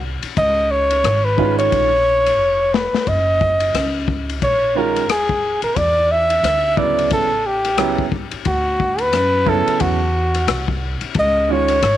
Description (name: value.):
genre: hip hop, jazz-hop.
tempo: 89 BPM.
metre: 4/4.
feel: swing 60% on 16ths.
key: unclear.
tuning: A4 = 440 Hz.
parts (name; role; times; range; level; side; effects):
trumpet with bucket mute; melody; 0.0-12.0 s; F#4 to E5; -17 LUFS; equal; none.
upright bass; bass; 0.0-12.0 s; D#1 to F#2; -23 LUFS; equal; none.
vintage drum kit; drums; 0.2-12.0 s; hi-hat, kick drum, ride cymbal, rim click, snare drum; -23 LUFS; left 6 dB; none.
bright upright piano; accompaniment; 1.4-11.8 s; C#3 to E#4; -21 LUFS; right 13 dB; none.
room: light reverb, studio ambience.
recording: 1960s-style stereo with parts hard left and right.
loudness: -15 LUFS.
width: side -12 dB against mid.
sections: 0.0-12.0 A section.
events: drum fill 2.4-3.1.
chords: 0.4 C#; 3.1 F#6; 5.8 E5; 7.1 A7; 8.5 Dmaj7; 11.2 C#.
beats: | 0.37 1.04 1.72 2.39 | 3.07 3.74 4.42 5.09 | 5.76 6.44 7.11 7.79 | 8.46 9.13 9.81 10.48 | 11.16 11.83.